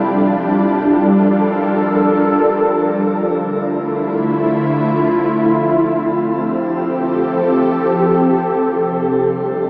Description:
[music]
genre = ambient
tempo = free time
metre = none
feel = none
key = F major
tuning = A4 = 439 Hz
[part]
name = ethereal airy pad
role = sustained chords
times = 0.0-9.7 s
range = C3 to Bb4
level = -13 LUFS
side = equal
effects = ensemble chorus, built-in reverb, shimmer reverb
[part]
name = organ-like drone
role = drone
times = 0.0-8.2 s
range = F3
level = -24 LUFS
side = equal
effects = ensemble chorus, built-in reverb
[sound]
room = wet huge ambient reverb, RT60 8.0 s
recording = dreamy mix soaked in reverb, small speaker sound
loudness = -13 LUFS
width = side -30 dB against mid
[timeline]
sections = 0.0-8.1 A section; 8.1-9.7 A section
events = none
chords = 0.1 Gm9; 2.7 Dmadd9; 5.4 Fadd9; 8.1 C69

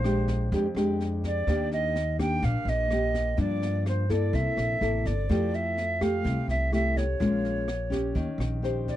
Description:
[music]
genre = bossa nova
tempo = 126 BPM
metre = 4/4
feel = straight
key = unclear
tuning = A4 = 442 Hz
[part]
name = silver concert flute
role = melody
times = 0.0-9.0 s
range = C5 to G5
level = -30 LUFS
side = right 2 dB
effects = none
[part]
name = nylon-string guitar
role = accompaniment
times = 0.0-9.0 s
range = F2 to C5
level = -29 LUFS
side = left 1 dB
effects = none
[part]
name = upright bass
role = bass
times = 0.0-9.0 s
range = G1 to G2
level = -29 LUFS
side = equal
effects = none
[part]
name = jazz brush drum kit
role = drums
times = 0.0-8.9 s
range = kick drum, rim click, snare drum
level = -35 LUFS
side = equal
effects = none
[sound]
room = little or no reverb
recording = dry, close 1970s-style studio recording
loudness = -24 LUFS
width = side -13 dB against mid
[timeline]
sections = 0.0-9.0 A section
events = none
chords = 0.0 Bb13; 1.5 Ebmaj7; 3.4 Gm7; 4.3 C6; 5.3 Fmaj9; 7.2 Bbm7; 8.2 Eb6

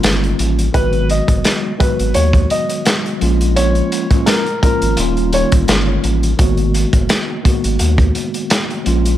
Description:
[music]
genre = hip hop, boom-bap hip-hop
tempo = 85 BPM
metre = 4/4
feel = swing 55% on 16ths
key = G# dorian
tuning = A4 = 438 Hz
[part]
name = mellow tine electric piano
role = accompaniment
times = 0.0-9.2 s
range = D#3 to F#4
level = -19 LUFS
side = equal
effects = medium stereo tremolo, high-pass filter, low-pass filter
[part]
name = saturated sub bass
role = bass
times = 0.0-9.2 s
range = D#1 to D#2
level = -16 LUFS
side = equal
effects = none
[part]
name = crunchy breakbeat drum kit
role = drums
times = 0.0-9.2 s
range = hi-hat, kick drum, snare drum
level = -16 LUFS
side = equal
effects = none
[part]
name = dark upright piano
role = melody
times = 0.7-5.5 s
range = A#4 to D#5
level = -20 LUFS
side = left 1 dB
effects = high-pass filter, low-pass filter, ping-pong delay
[sound]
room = small room ambience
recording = none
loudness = -13 LUFS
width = side -12 dB against mid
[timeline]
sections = 0.0-9.2 A section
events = none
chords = 0.0 D#7; 0.7 G#m7; 3.2 A#m7; 5.0 D#7; 6.4 G#m7

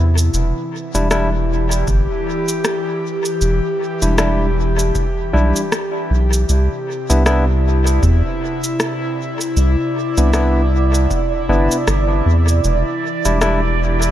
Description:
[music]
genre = ambient dub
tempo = 78 BPM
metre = 4/4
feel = swing 58% on 16ths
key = E minor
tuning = A4 = 440 Hz
[part]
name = airy breathy pad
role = sustained chords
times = 0.0-14.1 s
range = C3 to G4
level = -21 LUFS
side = left 1 dB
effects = chorus
[part]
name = soft dub sub bass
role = bass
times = 0.0-14.1 s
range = E1 to E2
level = -15 LUFS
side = equal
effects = tube saturation
[part]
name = electronic cabasa and rim click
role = drums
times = 0.2-14.1 s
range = none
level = -24 LUFS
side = left 1 dB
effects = small room ambience, dub echo
[part]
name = barky tine electric piano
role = stabs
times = 0.9-13.6 s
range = G3 to E4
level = -22 LUFS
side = left 1 dB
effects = dub echo
[part]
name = electronic kick drum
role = drums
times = 1.9-11.3 s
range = none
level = -23 LUFS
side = equal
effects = small room ambience
[part]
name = bubbling stepped-filter texture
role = texture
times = 7.4-14.1 s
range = D5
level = -26 LUFS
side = right 10 dB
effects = chorus, built-in reverb
[sound]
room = light reverb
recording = none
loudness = -15 LUFS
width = side -12 dB against mid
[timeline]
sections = 0.0-14.1 A section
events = none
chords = 0.3 Em7; 6.5 Cmaj9; 12.6 Em7

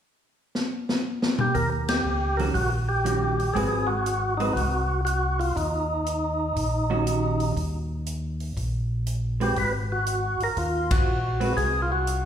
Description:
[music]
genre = soul jazz organ trio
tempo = 120 BPM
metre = 4/4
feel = swing 67% on 8ths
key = unclear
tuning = A4 = 440 Hz
[part]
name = swinging big-band drum kit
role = drums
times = 0.5-12.2 s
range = hi-hat, kick drum, ride cymbal, snare drum, toms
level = -29 LUFS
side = equal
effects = none
[part]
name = percussive tonewheel organ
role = melody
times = 1.4-12.3 s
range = Eb4 to B4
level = -26 LUFS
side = equal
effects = slow rotary speaker
[part]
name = mellow tonewheel organ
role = bass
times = 1.5-12.3 s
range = Ab1 to Eb2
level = -27 LUFS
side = equal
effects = overdrive, chorus vibrato, slow rotary speaker
[part]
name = vintage hollow-body jazz guitar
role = accompaniment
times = 2.4-11.6 s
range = Eb3 to B4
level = -29 LUFS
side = right 2 dB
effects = none
[sound]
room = wet recital hall reverb, RT60 1.3 s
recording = recorded in a church or concert hall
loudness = -23 LUFS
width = side -9 dB against mid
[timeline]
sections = 0.0-1.5 A section; 1.5-12.3 B section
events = drum fill 0.5-1.5; band accent 1.8, 10.8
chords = 0.0 N.C.; 1.5 Eb7#9; 3.6 Ab7#9; 5.6 Eb7#9; 9.6 Ab7

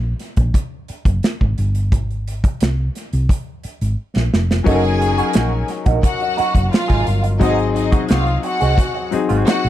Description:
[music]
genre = lush 1970s-style soul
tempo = 88 BPM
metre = 4/4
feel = straight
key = unclear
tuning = A4 = 439 Hz
[part]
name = hollow-body short-scale fingered electric bass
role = bass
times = 0.0-9.7 s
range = F1 to C2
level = -18 LUFS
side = equal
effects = none
[part]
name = modern studio drum kit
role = drums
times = 0.2-9.7 s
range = hi-hat, kick drum, snare drum, splash cymbal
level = -18 LUFS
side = equal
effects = none
[part]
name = bright concert grand piano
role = accompaniment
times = 4.6-9.7 s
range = Gb3 to Bb4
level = -21 LUFS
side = left 6 dB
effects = none
[part]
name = warm studio string section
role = second line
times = 4.7-9.7 s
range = Eb4 to Ab5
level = -22 LUFS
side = left 2 dB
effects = none
[part]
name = electric guitar through a small old amp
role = riff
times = 4.7-9.6 s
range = Ab3 to Ab4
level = -23 LUFS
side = right 8 dB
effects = wah
[sound]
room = little or no reverb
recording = none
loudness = -15 LUFS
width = side -13 dB against mid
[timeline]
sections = 0.0-9.7 A section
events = drum fill 4.0-4.7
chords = 0.0 Gb; 1.9 Ab; 4.7 Gb6; 7.4 Ab7

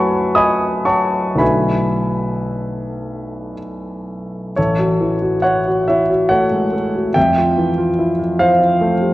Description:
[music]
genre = classical, impressionist solo piano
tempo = 54-74 BPM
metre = 3/4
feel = rubato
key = unclear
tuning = A4 = 442 Hz
[part]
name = clear grand piano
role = solo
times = 0.0-9.1 s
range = A1 to D#6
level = -14 LUFS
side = equal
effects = none
[sound]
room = wet concert hall reverb, RT60 2.3 s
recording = worn, warbling old tape, cassette tape, warbly pitch drift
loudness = -14 LUFS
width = side -16 dB against mid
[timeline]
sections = 0.0-4.6 A section; 4.6-9.1 B section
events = none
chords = 0.0 F#m7; 1.4 Bm7; 4.6 A6; 7.2 Fmaj7

